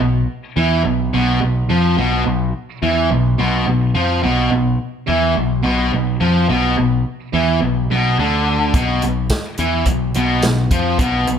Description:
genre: classic rock.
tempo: 107 BPM.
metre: 4/4.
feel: straight.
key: unclear.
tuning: A4 = 440 Hz.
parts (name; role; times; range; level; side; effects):
distorted electric guitar; riff; 0.0-11.4 s; B2 to E#3; -17 LUFS; equal; overdrive.
growling picked electric bass; bass; 0.0-11.4 s; B1 to E#2; -19 LUFS; equal; overdrive.
vintage drum kit; drums; 8.7-11.4 s; hi-hat, kick drum, snare drum, tambourine; -19 LUFS; equal; none.
room: light reverb.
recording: none.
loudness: -15 LUFS.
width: side -8 dB against mid.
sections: 0.0-11.4 A section.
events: none.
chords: 0.0 Bsus4.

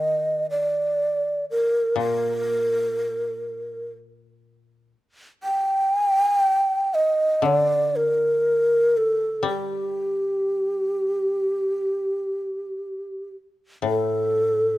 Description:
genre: japanese traditional.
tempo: 50-61 BPM.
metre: 4/4.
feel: rubato.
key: G hirajoshi.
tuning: A4 = 440 Hz.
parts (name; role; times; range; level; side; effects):
breathy mellow long shakuhachi; melody; 0.0-14.8 s; G4 to G5; -21 LUFS; equal; none.
koto; accompaniment; 0.0-14.8 s; A2 to G3; -29 LUFS; left 6 dB; none.
room: light reverb.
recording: close, detailed microphones.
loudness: -20 LUFS.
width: side -16 dB against mid.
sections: 0.0-13.8 A section.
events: none.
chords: none.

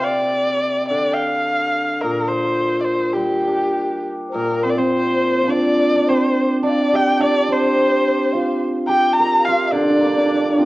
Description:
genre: chinese traditional, Chinese chamber ensemble.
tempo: 106 BPM.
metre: 4/4.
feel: rubato.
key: unclear.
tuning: A4 = 440 Hz.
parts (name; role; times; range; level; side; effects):
dark erhu; melody; 0.0-10.7 s; G4 to Bb5; -19 LUFS; equal; none.
hammered dulcimer; accompaniment; 0.0-6.1, 9.7-10.7 s; Bb2 to F4; -23 LUFS; left 1 dB; none.
mellow hollow large dizi; second line; 4.3-10.7 s; Bb4 to Bb5; -23 LUFS; left 3 dB; none.
hammered dulcimer; second line; 4.4-10.7 s; Bb3 to Bb4; -18 LUFS; right 2 dB; none.
room: wet recital hall reverb, RT60 1.6 s.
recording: worn, warbling old tape, cassette tape, warbly pitch drift.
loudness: -16 LUFS.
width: side -18 dB against mid.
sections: 0.0-4.4 A section; 4.4-10.7 B section.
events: none.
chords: none.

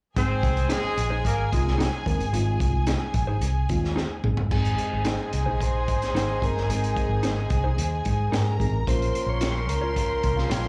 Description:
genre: uptempo 1960s-style soul.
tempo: 110 BPM.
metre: 4/4.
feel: straight.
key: Ab major.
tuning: A4 = 440 Hz.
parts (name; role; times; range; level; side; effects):
mellow horn section; second line; 0.2-10.7 s; F3 to C5; -35 LUFS; equal; tape echo.
warm studio violin section; second line; 0.2-10.7 s; Ab4 to C6; -36 LUFS; equal; slapback echo.
mellow reed electric piano; accompaniment; 0.2-9.6 s; Ab3 to Bb4; -34 LUFS; equal; fast tremolo, slapback echo.
vintage muted fingered electric bass; bass; 0.2-10.7 s; G1 to Ab2; -28 LUFS; equal; none.
crunchy breakbeat drum kit; drums; 0.2-10.6 s; crash cymbal, hi-hat, kick drum, snare drum, toms; -30 LUFS; equal; none.
mellow electric guitar; stabs; 0.7-10.6 s; Eb4 to Db5; -35 LUFS; equal; lush chorus, slapback echo.
tonewheel organ; melody; 4.5-10.7 s; F4 to Db5; -32 LUFS; equal; overdrive, stopped rotary speaker, slapback echo.
room: little or no reverb.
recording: live gig heard through the venue's PA, club reverb.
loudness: -25 LUFS.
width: mono.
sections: 0.2-4.5 A section; 4.5-10.7 B section.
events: drum fill 4.0-4.5.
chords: 0.2 Ab; 8.9 Bbm.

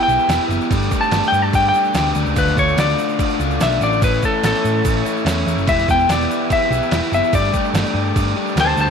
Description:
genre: indie rock.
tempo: 145 BPM.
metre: 4/4.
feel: straight.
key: unclear.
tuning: A4 = 442 Hz.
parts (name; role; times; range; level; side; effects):
clean electric guitar; melody; 0.0-8.9 s; A4 to A5; -18 LUFS; left 2 dB; slapback echo.
bright tonewheel organ; sustained chords; 0.0-8.9 s; A4 to E6; -31 LUFS; right 1 dB; overdrive, slow rotary speaker.
overdriven electric guitar; riff; 0.0-8.9 s; A2 to G4; -23 LUFS; left 15 dB; none.
overdriven electric guitar; riff; 0.0-8.9 s; A2 to E4; -24 LUFS; right 14 dB; wide subtle chorus, slapback echo.
hollow-body short-scale picked electric bass; bass; 0.1-8.9 s; E1 to A2; -21 LUFS; right 1 dB; none.
egg shaker; percussion; 0.1-8.9 s; none; -38 LUFS; right 22 dB; none.
boom bap sampler-style drum kit; drums; 0.3-8.7 s; crash cymbal, kick drum, snare drum; -22 LUFS; right 1 dB; none.
room: light reverb, digital ambience.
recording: 1960s-style stereo with parts hard left and right.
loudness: -15 LUFS.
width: side -6 dB against mid.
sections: 0.0-8.9 A section.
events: clean electric guitar solo 0.0-8.9.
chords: 0.0 Em; 0.7 Gsus2; 2.4 Dm; 4.0 A; 5.7 Em; 7.3 Gsus2.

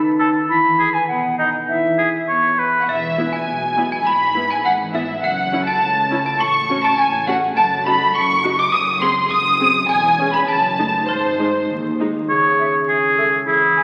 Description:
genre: cinematic, playful, whimsical film cue.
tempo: 102 BPM.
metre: 2/4.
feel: straight.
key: E major, C# minor from 7.6 s.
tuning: A4 = 440 Hz.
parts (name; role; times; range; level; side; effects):
mellow clarinet; second line; 0.0-2.8, 12.3-13.8 s; B3 to A4; -25 LUFS; equal; none.
concert harp; arpeggios; 0.0-13.8 s; E2 to D#5; -31 LUFS; equal; none.
bright concert flute; second line; 0.2-2.3, 12.6-13.8 s; D#5 to B5; -22 LUFS; equal; none.
clear oboe; second line; 0.2-2.9, 12.3-13.8 s; D#4 to C#5; -20 LUFS; equal; none.
rich studio violin section; melody; 2.8-11.7 s; B#4 to D#6; -23 LUFS; equal; none.
trough xylophone with wooden mallets; melody; 2.9-11.6 s; B#4 to D#6; -26 LUFS; equal; none.
warm studio violin section; second line; 2.9-11.7 s; B#4 to D#6; -22 LUFS; equal; none.
warm studio cello section; bass; 2.9-12.2 s; C#2 to B2; -33 LUFS; equal; none.
warm studio double bass section; bass; 2.9-12.2 s; E1 to D#2; -36 LUFS; equal; none.
warm studio viola section; accompaniment; 3.2-12.1 s; G#3 to G#4; -29 LUFS; equal; none.
room: wet scoring stage reverb, RT60 1.7 s.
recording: very old 78 rpm record, vinyl crackle.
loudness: -18 LUFS.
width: mono.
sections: 0.0-2.9 A section; 2.9-12.3 B section; 12.3-13.8 A section.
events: none.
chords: 0.5 E; 1.1 B; 1.7 E; 4.1 E/G#; 5.2 F#m7; 6.4 F#m/A; 7.6 D#dim/F#; 8.7 G#7/F#; 9.9 C#m/E; 10.5 D#dim/F#; 11.1 G#; 12.3 C#m.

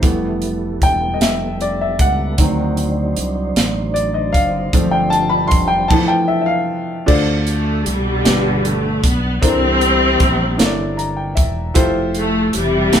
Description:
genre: slow gospel.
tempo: 51 BPM (dotted quarters).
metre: 6/8.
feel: straight.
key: unclear.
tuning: A4 = 440 Hz.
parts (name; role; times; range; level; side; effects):
warm upright piano; accompaniment; 0.0-13.0 s; G2 to C6; -19 LUFS; left 1 dB; none.
dark French horn section; sustained chords; 0.0-5.9 s; Eb3 to D5; -30 LUFS; right 4 dB; none.
mellow tonewheel organ; sustained chords; 0.0-5.9 s; F#3 to C5; -26 LUFS; right 2 dB; fast rotary speaker, chorus vibrato.
fingered electric bass; bass; 0.0-13.0 s; E1 to D2; -22 LUFS; equal; none.
crisp fusion drum kit; drums; 0.0-13.0 s; crash cymbal, hi-hat, kick drum, snare drum; -17 LUFS; equal; none.
warm studio string section; melody; 7.5-13.0 s; B2 to C4; -16 LUFS; left 1 dB; none.
room: moderate studio reverb, RT60 0.6 s.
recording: band playing live in one room.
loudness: -14 LUFS.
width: side -9 dB against mid.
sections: 0.0-7.1 A section; 7.1-13.0 B section.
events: upright piano solo 0.0-7.1; upright piano fill 10.6-11.8.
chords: 0.0 Fmaj9#11; 2.4 D7b9; 4.7 G7sus4; 5.9 G13/E; 7.1 Dm7; 8.3 G7; 9.4 C13; 11.8 Fmaj9.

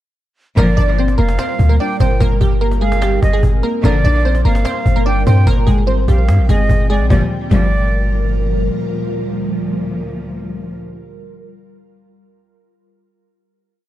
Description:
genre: hip hop, trap.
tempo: 147 BPM.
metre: 4/4.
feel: half-time.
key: G phrygian.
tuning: A4 = 439 Hz.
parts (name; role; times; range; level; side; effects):
glassy wavetable pluck; melody; 0.6-8.3 s; G3 to D5; -20 LUFS; equal; chorus, digital delay.
breathy silver concert flute; second line; 0.6-8.3 s; D5 to G5; -23 LUFS; right 3 dB; digital delay.
ethereal airy pad; sustained chords; 1.3-10.4 s; Eb3 to G5; -25 LUFS; right 1 dB; ensemble chorus, built-in reverb, phaser.
warm symphonic string section; stabs; 0.6-1.0, 3.8-4.2, 7.1-10.8 s; D2 to F3; -21 LUFS; left 1 dB; digital delay.
warm 808-style bass; bass; 0.6-8.7 s; F1 to G2; -14 LUFS; equal; none.
cajon; drums; 0.6-7.6 s; none; -22 LUFS; equal; none.
room: small room ambience.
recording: dark, warm production.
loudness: -13 LUFS.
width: side -14 dB against mid.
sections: 0.6-7.1 hook; 7.1-10.4 final chord.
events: none.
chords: 0.6 Gm7; 2.2 Cm7/G; 3.8 Gm7; 5.5 Abmaj7/G; 7.1 Gm7.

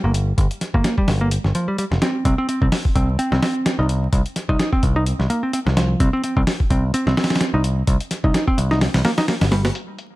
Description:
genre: breakbeat, breaks.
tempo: 128 BPM.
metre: 4/4.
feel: swing 56% on 16ths.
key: G minor.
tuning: A4 = 440 Hz.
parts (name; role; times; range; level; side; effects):
picked electric bass; riff; 0.0-9.6 s; F3 to Eb4; -22 LUFS; equal; tape echo.
picked electric bass; bass; 0.0-9.7 s; F1 to C2; -19 LUFS; equal; none.
dusty soul sampler-style drum kit; drums; 0.1-10.1 s; hi-hat, kick drum, snare drum; -20 LUFS; equal; low-pass filter on snare, studio reverb, low-pass filter on hats, low-pass filter on kick.
room: digital ambience.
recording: vinyl crackle.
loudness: -17 LUFS.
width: side -18 dB against mid.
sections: 0.0-9.8 A section.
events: none.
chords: 0.0 Gm; 2.3 N.C..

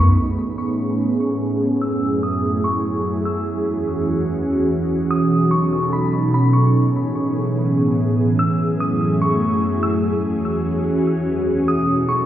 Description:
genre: hip hop.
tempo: 146 BPM.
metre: 4/4.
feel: half-time.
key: E major.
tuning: A4 = 440 Hz.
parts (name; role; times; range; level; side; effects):
glassy synth bell; melody; 0.0-12.3 s; B5 to E6; -26 LUFS; left 1 dB; chorus, tremolo, low-pass filter, ping-pong delay.
ethereal airy pad; sustained chords; 0.0-12.3 s; E2 to A4; -17 LUFS; right 1 dB; ensemble chorus, built-in reverb, low-pass filter.
room: light reverb.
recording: heard muffled through a wall, stone room reverb, EQ.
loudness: -17 LUFS.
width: side -11 dB against mid.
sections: 0.2-12.3 A section.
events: filter sweep 0.2-12.3.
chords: 0.2 Amaj7; 1.8 F#m7; 3.5 E69; 5.1 B9; 6.7 Amaj7; 8.4 F#m7; 10.0 E69; 11.7 B9.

